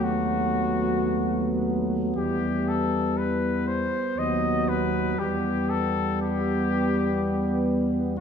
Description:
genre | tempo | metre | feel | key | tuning
classical, hymn-like piece for brass band | 56-62 BPM | 3/4 | rubato | E minor | A4 = 440 Hz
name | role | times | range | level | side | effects
clear cornet | melody | 0.0-7.7 s | F#4 to D#5 | -29 LUFS | left 6 dB | none
mellow French horn section | second line | 0.0-8.2 s | B3 | -30 LUFS | right 4 dB | none
clear trombone | accompaniment | 0.0-8.2 s | E3 to G3 | -30 LUFS | right 3 dB | none
mellow euphonium | accompaniment | 0.0-8.2 s | G3 to B3 | -31 LUFS | left 3 dB | none
dark tuba | bass | 0.0-8.2 s | D#2 to E2 | -29 LUFS | equal | none
room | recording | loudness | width
moderate concert hall reverb, RT60 2.4 s | small room ambience | -23 LUFS | side -7 dB against mid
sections
0.0-8.2 A section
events
none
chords
0.0 B7/D#; 2.2 Em; 4.2 B/D#; 5.2 Em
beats
0.04 1.10 | 2.16 3.17 4.17 | 5.18 6.21 7.21 | 8.19

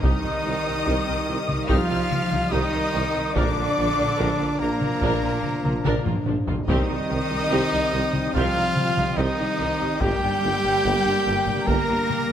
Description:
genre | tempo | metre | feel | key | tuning
cinematic, epic orchestral film score | 72 BPM | 4/4 | straight | C minor | A4 = 440 Hz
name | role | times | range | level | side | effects
rich studio violin section | melody | 0.0-12.3 s | Bb5 to Bb6 | -31 LUFS | left 4 dB | none
warm symphonic violin section | second line | 0.0-12.3 s | Bb4 to Bb5 | -30 LUFS | left 3 dB | none
rich symphonic viola section | accompaniment | 0.0-12.0 s | D3 to Bb4 | -31 LUFS | equal | none
dark French horn section | sustained chords | 0.0-12.3 s | F3 to Eb4 | -31 LUFS | left 3 dB | none
clear trumpet | stabs | 0.0-12.3 s | Bb3 to Bb4 | -27 LUFS | right 1 dB | none
clear symphonic cello section | bass | 0.0-12.3 s | Bb2 to Bb3 | -29 LUFS | right 2 dB | none
rich symphonic double bass section | bass | 0.0-12.0 s | G1 to C2 | -30 LUFS | right 1 dB | none
warm tuba | bass | 0.0-11.8 s | G1 to C2 | -31 LUFS | right 4 dB | none
taiko ensemble | drums | 0.0-12.3 s | none | -26 LUFS | left 1 dB | none
room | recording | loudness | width
moderate scoring stage reverb, RT60 2.0 s | none | -20 LUFS | side -9 dB against mid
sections
0.0-12.3 A section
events
drum fill 5.8-6.7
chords
0.0 Cm; 3.4 Bb; 6.7 Cm; 10.0 Gm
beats
| 0.03 0.86 1.69 2.52 | 3.35 4.18 5.01 5.85 | 6.68 7.51 8.35 9.18 | 10.01 10.84 11.68

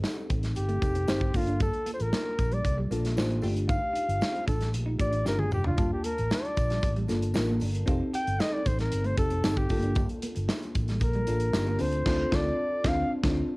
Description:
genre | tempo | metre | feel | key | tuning
polished 1980s jazz-funk pop | 115 BPM | 4/4 | straight | G minor | A4 = 440 Hz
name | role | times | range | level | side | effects
bell-like FM electric piano | accompaniment | 0.0-13.6 s | A3 to A5 | -32 LUFS | left 1 dB | wide subtle chorus, cassette tape
clean electric guitar | riff | 0.0-11.9 s | G3 to G4 | -37 LUFS | right 2 dB | lush chorus, cassette tape
mellow fretless electric bass | bass | 0.0-13.4 s | F1 to D2 | -30 LUFS | equal | wide subtle chorus
modern studio drum kit | drums | 0.0-13.4 s | crash cymbal, hi-hat, kick drum, snare drum, toms | -30 LUFS | equal | cassette tape
tambourine | percussion | 0.0-11.9 s | none | -54 LUFS | right 2 dB | none
warm flugelhorn | melody | 0.6-13.1 s | F4 to G5 | -31 LUFS | equal | none
room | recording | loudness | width
light reverb | home recording on cassette | -25 LUFS | side -24 dB against mid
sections
0.0-13.6 A section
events
flugelhorn solo 0.0-13.6; drum fill 5.3-5.8; band accent 12.1-13.6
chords
0.0 F9; 1.4 Gm7; 3.4 Ebmaj9#11/G; 5.8 Gm7; 7.9 F9; 9.7 Gm7; 11.8 Dm7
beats
0.04 0.57 1.09 | 1.61 2.13 2.66 3.18 | 3.70 4.22 4.75 5.27 | 5.79 6.31 6.83 7.36 | 7.88 8.40 8.92 9.45 | 9.97 10.49 11.01 11.54 | 12.06 12.58 13.10

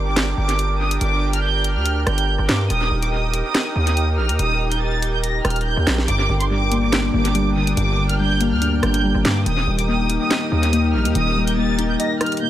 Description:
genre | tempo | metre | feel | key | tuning
hip hop, drill | 142 BPM | 4/4 | half-time | G minor | A4 = 441 Hz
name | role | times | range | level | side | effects
dark studio violin section | melody | 0.0-12.5 s | C6 to Bb6 | -24 LUFS | right 1 dB | tape echo
sweeping resonant pad | sustained chords | 0.0-12.5 s | D4 to G5 | -27 LUFS | right 2 dB | chorus
distorted 808-style bass | bass | 0.0-12.0 s | Eb1 to G2 | -21 LUFS | equal | distortion
drill drum kit | drums | 0.2-12.4 s | handclaps, hi-hat, rim click, snare drum | -25 LUFS | equal | tape echo
muted felt-like synth keys | accompaniment | 6.1-12.5 s | G2 to Eb5 | -21 LUFS | left 3 dB | chorus, tape echo
room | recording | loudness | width
digital ambience | echo-heavy mix | -17 LUFS | side -12 dB against mid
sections
0.0-12.5 A section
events
kick muted 12.0-12.5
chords
0.0 Gm; 2.7 Eb; 6.1 Gm; 9.5 Eb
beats
0.17 0.59 | 1.01 1.43 1.86 2.28 | 2.70 3.12 3.55 3.97 | 4.39 4.81 5.24 5.66 | 6.08 6.50 6.93 7.35 | 7.77 8.19 8.62 9.04 | 9.46 9.88 10.31 10.73 | 11.15 11.57 12.00 12.42

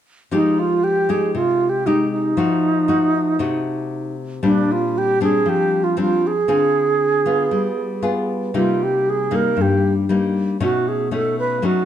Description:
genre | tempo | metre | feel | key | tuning
bossa nova | 117 BPM | 4/4 | straight | F minor | A4 = 439 Hz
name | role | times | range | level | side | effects
alto flute | melody | 0.3-11.8 s | D4 to B4 | -18 LUFS | right 3 dB | plate reverb
nylon-string guitar | accompaniment | 0.3-11.8 s | G2 to Ab4 | -20 LUFS | left 4 dB | none
room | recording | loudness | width
moderate studio reverb, RT60 0.7 s | dark, warm production | -16 LUFS | side -10 dB against mid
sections
0.3-11.8 A section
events
none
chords
0.3 Fm9; 2.4 F7b9; 4.4 Bb69; 6.5 Dm7b5; 7.5 G7b9; 8.5 Cm7; 10.6 B9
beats
| 0.32 0.83 1.35 1.86 | 2.37 2.89 3.40 3.92 | 4.43 4.94 5.46 5.97 | 6.49 7.00 7.51 8.03 | 8.54 9.05 9.57 10.08 | 10.60 11.11 11.63

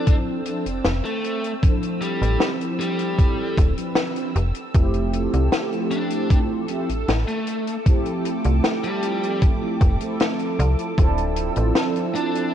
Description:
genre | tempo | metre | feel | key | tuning
vaporwave | 77 BPM | 4/4 | straight | F major | A4 = 442 Hz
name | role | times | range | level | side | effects
biting lead guitar | melody | 0.0-12.5 s | G3 to D4 | -29 LUFS | equal | overdrive, tape echo
mellow synth brass | accompaniment | 0.0-12.5 s | F3 to B4 | -25 LUFS | right 1 dB | lush chorus, cassette tape, analog delay
soft string machine | sustained chords | 0.0-12.5 s | C4 to E6 | -32 LUFS | right 1 dB | ensemble chorus
compact cocktail drum kit | drums | 0.1-12.5 s | hi-hat, snare drum | -26 LUFS | left 2 dB | studio reverb
electronic kick drum | drums | 0.1-11.1 s | none | -17 LUFS | equal | studio reverb
slap-like FM bass | bass | 0.7-11.7 s | D1 to C2 | -21 LUFS | equal | none
room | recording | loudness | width
light reverb, small room ambience | cassette tape | -19 LUFS | side -10 dB against mid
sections
0.0-12.5 A section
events
none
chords
0.0 Dm9; 4.4 Fmaj7; 11.0 Dm9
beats
0.07 0.85 | 1.63 2.41 3.19 3.97 | 4.75 5.53 6.30 7.08 | 7.86 8.64 9.42 10.20 | 10.98 11.76 12.54

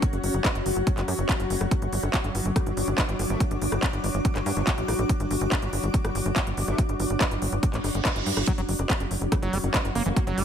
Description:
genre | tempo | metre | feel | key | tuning
psychedelic trance | 142 BPM | 4/4 | straight | unclear | A4 = 443 Hz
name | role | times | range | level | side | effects
formant-sweep wobble bass | second line | 0.0-0.1, 3.3-6.8, 10.1-10.2 s | F#3 to A#3 | -40 LUFS | left 2 dB | none
pulsing gated texture | sustained chords | 0.0-10.4 s | F#3 to F#4 | -32 LUFS | left 3 dB | chorus, built-in reverb, sidechain pumping
electronic kick drum | drums | 0.0-10.2 s | none | -25 LUFS | equal | overdrive
techno drum kit | drums | 0.0-10.4 s | handclaps, hi-hat, rim click | -30 LUFS | equal | overdrive
granular cloud pad | texture | 0.0-10.4 s | C#4 to D6 | -33 LUFS | right 1 dB | built-in reverb, sidechain pumping
tight sequencer bass | bass | 0.1-10.4 s | F#1 to G2 | -28 LUFS | equal | none
reverse cymbal | sound effects | 7.8-8.5 s | none | -32 LUFS | right 5 dB | none
screaming distorted acid line | riff | 8.5-10.4 s | E3 to A#3 | -30 LUFS | moving between left 4 dB and right 4 dB | distortion, chorus, auto-pan, sidechain pumping, tape echo
room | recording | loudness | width
light reverb, digital ambience | none | -23 LUFS | side -8 dB against mid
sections
0.0-10.4 A section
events
reverse cymbal 7.8-8.5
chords
0.0 F#5; 1.7 G5; 8.5 F#5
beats
| 0.02 0.45 0.87 1.29 | 1.71 2.14 2.56 2.98 | 3.40 3.83 4.25 4.67 | 5.09 5.52 5.94 6.36 | 6.78 7.21 7.63 8.05 | 8.47 8.90 9.32 9.74 | 10.16

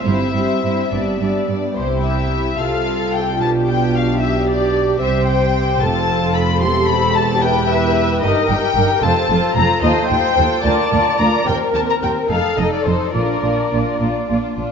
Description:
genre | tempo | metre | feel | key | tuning
quick classical-period movement for string orchestra | 69-76 BPM (dotted quarters) | 6/8 | rubato | C major, Bb major from 8.2 s | A4 = 438 Hz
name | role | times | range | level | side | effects
warm symphonic violin section | melody | 0.0-14.0 s | Bb4 to C6 | -20 LUFS | left 6 dB | none
warm symphonic violin section | second line | 0.0-14.7 s | C4 to D5 | -22 LUFS | left 3 dB | none
dark symphonic viola section | accompaniment | 0.0-14.4 s | G3 to D5 | -21 LUFS | right 2 dB | none
warm symphonic double bass section | bass | 0.0-14.6 s | E1 to Eb2 | -23 LUFS | right 4 dB | none
warm symphonic cello section | bass | 0.1-14.7 s | D2 to C3 | -22 LUFS | right 3 dB | none
room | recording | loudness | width
wet scoring stage reverb, RT60 2.1 s | nothing above 7.5 kHz | -14 LUFS | side -6 dB against mid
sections
0.0-1.8 A section; 1.8-14.7 B section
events
none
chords
0.0 C/G; 0.9 G; 1.8 C; 2.6 F/C; 3.4 G7/B; 5.0 C5; 5.8 F; 6.6 C/E; 8.2 Eb/G; 9.0 F; 9.8 F7/Eb; 10.6 Bb/D; 11.5 Cm7/Eb; 12.3 F7; 13.1 Bb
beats
| 0.04 0.91 | 1.77 2.59 | 3.40 4.21 | 5.01 5.81 | 6.62 7.42 | 8.23 9.03 | 9.83 10.65 | 11.47 12.30 | 13.15 14.00

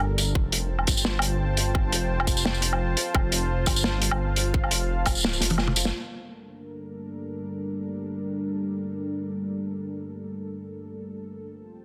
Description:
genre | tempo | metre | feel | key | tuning
half-time drum and bass | 172 BPM | 4/4 | swing 55% on 16ths, half-time | G minor | A4 = 441 Hz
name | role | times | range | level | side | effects
dark analog pad | sustained chords | 0.0-11.8 s | G3 to A5 | -34 LUFS | equal | chorus, vintage 12-bit sampler grit, sidechain pumping
dark detuned saw bass | bass | 0.0-5.9 s | F1 to G1 | -29 LUFS | equal | none
crunchy breakbeat drum kit | drums | 0.0-5.9 s | hi-hat, snare drum, tambourine, toms, woodblock | -28 LUFS | equal | none
electronic kick drum | drums | 0.4-5.1 s | none | -27 LUFS | equal | none
room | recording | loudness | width
light reverb | dense, heavily limited modern master | -26 LUFS | mono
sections
0.0-5.9 A section; 5.9-11.8 B section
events
drop 0.0-5.9; drum fill 5.4-5.9; band accent 5.8; filter sweep on analog synth pad 5.9-11.8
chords
0.4 F; 5.9 Gm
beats
0.00 | 0.35 0.70 1.05 1.40 | 1.75 2.10 2.45 2.79 | 3.14 3.49 3.84 4.19 | 4.54 4.89 5.24 5.58 | 5.93 6.28 6.63 6.98 | 7.33 7.68 8.03 8.38 | 8.72 9.07 9.42 9.77 | 10.12 10.47 10.82 11.17 | 11.52

